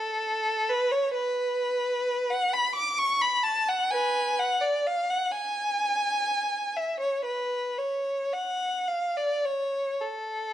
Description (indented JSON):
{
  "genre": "classical, free, expressive piece for unaccompanied violin",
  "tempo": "34-44 BPM (dotted quarters)",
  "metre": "6/8",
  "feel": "rubato",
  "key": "unclear",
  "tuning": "A4 = 440 Hz",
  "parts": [
    { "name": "rich violin", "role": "solo", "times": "0.0-10.5 s", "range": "A4 to D6", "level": "-25 LUFS", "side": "equal", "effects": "none" }
  ],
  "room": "light reverb",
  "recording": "dark, warm production",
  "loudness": "-25 LUFS",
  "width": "side -11 dB against mid",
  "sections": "0.0-10.5 A section",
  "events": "none",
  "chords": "none",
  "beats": "| 1.13 2.53 | 3.92 5.33 | 6.76 8.34 | 10.01"
}